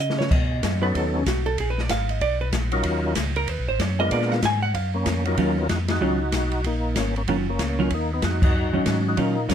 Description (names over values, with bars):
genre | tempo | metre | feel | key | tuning
soul jazz organ trio | 190 BPM | 4/4 | swing 62% on 8ths | Eb minor | A4 = 442 Hz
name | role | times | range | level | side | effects
vintage hollow-body jazz guitar | accompaniment | 0.0-9.5 s | Eb3 to Ab5 | -25 LUFS | right 2 dB | none
mellow tonewheel organ | bass | 0.0-9.5 s | Gb1 to Db3 | -26 LUFS | equal | overdrive, slow rotary speaker
open jazz drum kit | drums | 0.1-9.5 s | crash cymbal, hi-hat, kick drum, ride cymbal, snare drum | -26 LUFS | left 1 dB | none
overdriven tonewheel organ | melody | 0.8-9.5 s | F#3 to Bb4 | -26 LUFS | left 1 dB | slow rotary speaker, chorus vibrato
room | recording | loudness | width
little or no reverb | close, detailed microphones, faint mains hum | -20 LUFS | side -9 dB against mid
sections
0.0-5.4 A section; 5.4-9.5 B section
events
drum fill 0.0-0.3; hollow-body jazz guitar solo 0.0-5.4; band accent 5.9, 8.4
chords
0.3 B7; 1.6 Bb5; 2.8 Ebm9; 3.5 Abm9; 4.1 Bb7b9; 5.4 Ebm9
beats
| 0.31 0.62 0.94 1.26 | 1.58 1.90 2.21 2.53 | 2.85 3.16 3.48 3.80 | 4.12 4.43 4.75 5.07 | 5.38 5.70 6.01 6.33 | 6.65 6.96 7.28 7.60 | 7.91 8.23 8.55 8.86 | 9.18 9.49